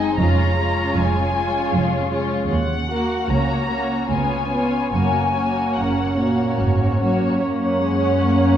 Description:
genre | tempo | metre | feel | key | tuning
classical, slow romantic movement for string orchestra | 70-79 BPM | 3/4 | rubato | F# major | A4 = 440 Hz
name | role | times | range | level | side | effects
muted chamber violin section | melody | 0.0-8.6 s | F#5 to A#5 | -26 LUFS | left 4 dB | none
muted chamber violin section | second line | 0.0-8.6 s | C#4 to D#5 | -24 LUFS | left 2 dB | none
muted symphonic viola section | accompaniment | 0.0-8.6 s | G#3 to C#5 | -23 LUFS | equal | none
muted chamber cello section | bass | 0.0-8.6 s | C#2 to A#3 | -25 LUFS | right 2 dB | none
muted symphonic double bass section | bass | 0.0-8.6 s | E#1 to F#2 | -24 LUFS | right 2 dB | none
room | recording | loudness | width
wet recital hall reverb, RT60 1.6 s | dark, warm production | -18 LUFS | side -10 dB against mid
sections
0.0-7.4 A section; 7.4-8.6 A section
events
none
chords
0.2 C#/E#; 2.5 D#m; 3.3 F#/C#; 4.1 C#7; 4.9 F#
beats
| 0.18 0.95 1.73 | 2.50 3.29 4.09 | 4.93 5.76 6.58 | 7.42 8.22

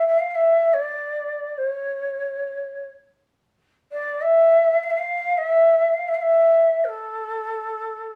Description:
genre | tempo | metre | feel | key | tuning
Persian modal ensemble | free time | none | none | A dastgah homayun | A4 = 441 Hz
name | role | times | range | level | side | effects
breathy ney | solo | 0.0-8.2 s | A4 to F5 | -21 LUFS | equal | none
room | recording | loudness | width
wet studio reverb, RT60 0.6 s | band playing live in one room | -21 LUFS | mono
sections
0.0-8.2 A section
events
none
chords
none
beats
free time

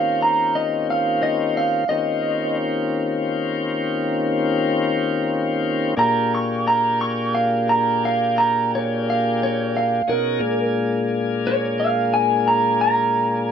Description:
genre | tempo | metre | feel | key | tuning
blues | 59 BPM (dotted quarters) | 12/8 | straight | unclear | A4 = 440 Hz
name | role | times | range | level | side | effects
electric guitar through a small old amp | melody | 0.0-13.5 s | Bb4 to Db6 | -19 LUFS | right 2 dB | slapback echo
tonewheel organ | sustained chords | 0.0-13.5 s | Bb2 to Bb4 | -21 LUFS | left 3 dB | slow rotary speaker
room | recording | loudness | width
moderate club reverb, RT60 0.6 s | none | -18 LUFS | side -8 dB against mid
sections
0.0-13.5 A section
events
none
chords
0.0 Eb13; 6.0 Bb6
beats
0.86 | 1.89 2.91 3.93 4.96 | 5.98 7.00 8.02 9.04 | 10.06 11.08 12.10 13.12

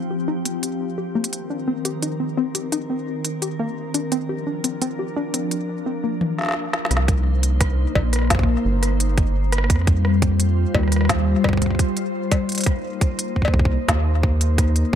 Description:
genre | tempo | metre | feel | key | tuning
IDM | 86 BPM | 4/4 | straight | C minor | A4 = 439 Hz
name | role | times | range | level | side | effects
glassy FM pad | sustained chords | 0.0-15.0 s | Eb3 to C5 | -25 LUFS | left 2 dB | ensemble chorus, built-in reverb
warbly dusty pluck | arpeggios | 0.0-6.1 s | Bb3 to G4 | -26 LUFS | left 2 dB | chorus, ping-pong delay
organic electronic drum kit | drums | 0.5-14.9 s | cowbell, hi-hat, rim click, snare drum, toms | -25 LUFS | left 1 dB | ping-pong delay
rubbery square bass | bass | 6.9-15.0 s | G1 to F2 | -19 LUFS | right 1 dB | none
electronic kick drum | drums | 7.1-15.0 s | none | -20 LUFS | right 1 dB | none
room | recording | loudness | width
digital ambience | none | -19 LUFS | side -9 dB against mid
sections
0.0-6.9 A section; 6.9-15.0 B section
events
drum fill 6.2-6.9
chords
0.0 Fsus2; 1.3 Cm7; 4.1 Bb; 6.9 Cm7; 9.7 Fsus2; 12.5 Cm7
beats
0.63 | 1.33 2.02 2.72 3.42 | 4.12 4.82 5.51 6.21 | 6.91 7.61 8.30 9.00 | 9.70 10.40 11.10 11.79 | 12.49 13.19 13.88 14.58

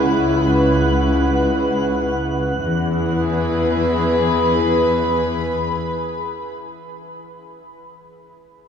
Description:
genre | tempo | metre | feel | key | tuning
ambient | free time | none | none | E major | A4 = 441 Hz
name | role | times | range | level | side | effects
dark studio string section | sustained chords | 0.0-6.5 s | C#3 to B5 | -18 LUFS | left 1 dB | none
muted studio cello section | bass | 0.0-5.7 s | C#2 to E2 | -22 LUFS | equal | none
twinkling granular texture | texture | 0.0-2.6 s | F#5 to F#6 | -29 LUFS | right 2 dB | built-in reverb
room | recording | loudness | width
wet huge ambient reverb, RT60 7.9 s | cassette tape | -16 LUFS | side -7 dB against mid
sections
0.0-2.6 A section; 2.6-6.9 B section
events
none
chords
0.0 C#m7; 2.6 E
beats
free time

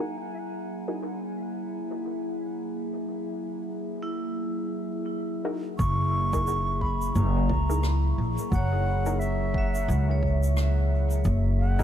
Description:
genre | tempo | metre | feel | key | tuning
ambient dub | 88 BPM | 4/4 | swing 59% on 16ths | F# mixolydian | A4 = 441 Hz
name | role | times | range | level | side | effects
warbly tape-like pad | sustained chords | 0.0-11.8 s | F#3 to E5 | -33 LUFS | equal | chorus, built-in reverb
filtered dub chord stab | stabs | 0.0-1.1, 5.4-11.8 s | D#4 to A#4 | -37 LUFS | left 1 dB | chorus, dub echo
vibraphone with hard mallets | arpeggios | 4.0-11.8 s | E4 to E5 | -36 LUFS | right 2 dB | vintage 12-bit sampler grit, dub echo
hollow wooden flute | melody | 5.8-11.8 s | E5 to C#6 | -33 LUFS | equal | dub echo
upright bass | bass | 5.8-11.8 s | F#1 to C#2 | -24 LUFS | equal | none
electronic kick drum | drums | 5.8-11.8 s | none | -30 LUFS | equal | overdrive
shaker and rim click | drums | 5.8-11.8 s | none | -41 LUFS | left 1 dB | dub echo
room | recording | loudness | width
light reverb, small room reverb | none | -25 LUFS | side -10 dB against mid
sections
0.0-5.8 A section; 5.8-11.8 B section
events
filter sweep on synth stab 0.0-5.8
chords
0.0 F#13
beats
| 0.34 1.02 1.70 2.38 | 3.07 3.75 4.43 5.11 | 5.79 6.48 7.16 7.84 | 8.52 9.20 9.88 10.57 | 11.25

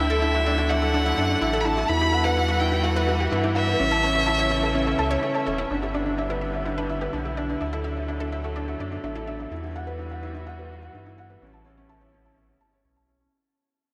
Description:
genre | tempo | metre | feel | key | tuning
piano and strings electronica | 126 BPM | 4/4 | straight | unclear | A4 = 436 Hz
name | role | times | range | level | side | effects
clear violin | melody | 0.0-5.2 s | E5 to B5 | -28 LUFS | equal | delay
warm string quartet | sustained chords | 0.0-13.3 s | C#3 to F#4 | -33 LUFS | equal | low-pass filter
analog pluck | arpeggios | 0.0-9.3 s | C#4 to A5 | -36 LUFS | equal | chorus, delay
felt-muted upright piano | riff | 0.0-13.3 s | C#4 to A5 | -30 LUFS | equal | delay
warm sub bass | bass | 0.0-13.3 s | E1 to G2 | -31 LUFS | equal | none
room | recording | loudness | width
wet huge ambient reverb, RT60 8.2 s | dreamy mix soaked in reverb | -24 LUFS | mono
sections
0.0-5.7 A section; 5.7-13.3 B section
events
drop 0.0-5.7; fade-out 5.7-13.3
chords
0.0 Dadd9; 1.9 Emadd9; 3.8 A; 5.7 G6; 7.6 Dadd9; 9.5 Emadd9; 11.4 A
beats
0.47 0.94 1.42 | 1.89 2.37 2.85 3.32 | 3.80 4.28 4.75 5.23 | 5.70 6.18 6.66 7.13 | 7.61 8.08 8.56 9.04 | 9.51 9.99 10.46 10.94 | 11.42 11.89 12.37 12.85

